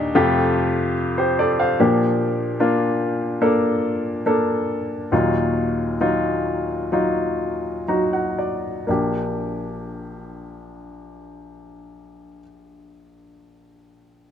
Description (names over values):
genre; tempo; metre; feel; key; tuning
pop; 58-74 BPM; 4/4; straight; Bb major; A4 = 440 Hz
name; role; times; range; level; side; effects
clear baby grand piano; accompaniment; 0.0-14.3 s; Bb1 to Bb5; -19 LUFS; left 1 dB; none
room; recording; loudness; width
light reverb; dark, warm production; -19 LUFS; side -8 dB against mid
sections
0.0-1.8 A section; 1.8-8.9 B section; 8.9-13.0 C section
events
slowing down 1.8-8.9; grand piano fill 7.4-8.9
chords
0.2 Fadd9; 1.8 Bb6; 5.1 Ebmadd9; 8.9 Bb6